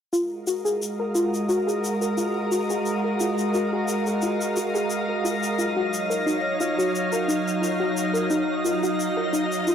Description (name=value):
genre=sunset chillout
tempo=88 BPM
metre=4/4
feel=swing 54% on 16ths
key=F# major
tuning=A4 = 438 Hz
part: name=soft string machine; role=sustained chords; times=0.4-9.7 s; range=F#3 to E#5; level=-25 LUFS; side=right 1 dB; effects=ensemble chorus
part: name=soft round pluck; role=arpeggios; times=0.1-9.7 s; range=D#4 to A#4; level=-26 LUFS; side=left 1 dB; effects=lush chorus, cassette tape, tape echo
part: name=shaker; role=drums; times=0.1-9.7 s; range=none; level=-35 LUFS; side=left 3 dB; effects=none
part: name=drifting glass-harmonics texture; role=texture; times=0.7-9.7 s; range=D#5 to D#6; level=-31 LUFS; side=left 2 dB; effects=chorus, built-in reverb
room=moderate concert hall reverb, RT60 2.0 s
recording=dry, gritty hardware recording, transformer saturation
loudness=-22 LUFS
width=side -8 dB against mid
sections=0.1-9.7 A section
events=filter sweep on synth arpeggio sound 0.1-9.7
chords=0.1 F#maj9; 5.6 D#m9